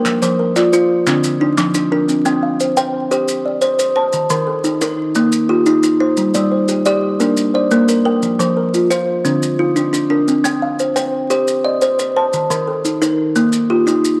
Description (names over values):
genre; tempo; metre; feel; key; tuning
southern african traditional, mbira-style interlocking cycle; 117 BPM (dotted quarters); 12/8; straight; C dorian; A4 = 441 Hz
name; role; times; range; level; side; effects
kalimba; arpeggios; 0.0-14.2 s; D3 to A5; -20 LUFS; equal; none
kalimba; arpeggios; 0.0-14.2 s; Eb3 to G5; -18 LUFS; equal; none
group handclap; percussion; 0.1-1.8 s; none; -27 LUFS; equal; none
maracas; percussion; 0.1-14.2 s; none; -29 LUFS; equal; none
room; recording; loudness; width
wet spring reverb, RT60 1.7 s, small room reverb; vinyl crackle; -16 LUFS; mono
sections
0.0-2.1 A section; 2.1-14.2 A section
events
none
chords
0.1 F5; 1.1 Dm; 2.1 C5; 4.1 Eb; 6.2 G5; 7.2 Bb; 8.2 F5; 9.2 Dm; 10.3 Cm; 12.3 Eb